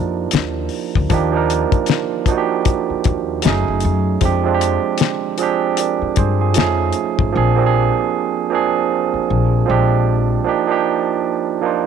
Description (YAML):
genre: R&B, neo-soul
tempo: 77 BPM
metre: 4/4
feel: swing 58% on 16ths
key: unclear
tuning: A4 = 443 Hz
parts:
  - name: barky tine electric piano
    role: accompaniment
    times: 0.0-11.9 s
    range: F3 to D5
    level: -17 LUFS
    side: right 10 dB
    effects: overdrive
  - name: upright bass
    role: bass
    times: 0.0-10.4 s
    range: Gb1 to G2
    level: -19 LUFS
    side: left 2 dB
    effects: tube saturation
  - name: damped 70s drum kit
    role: drums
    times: 0.3-7.3 s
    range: hi-hat, kick drum, snare drum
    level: -18 LUFS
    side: left 6 dB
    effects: none
room: little or no reverb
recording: 1960s-style stereo with parts hard left and right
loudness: -15 LUFS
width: side -7 dB against mid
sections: 0.0-11.9 A section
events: none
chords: 0.0 Ebmaj9; 3.4 Gbm69; 4.2 Fm69; 6.6 F7alt; 7.3 Bb13; 10.5 Ebmaj9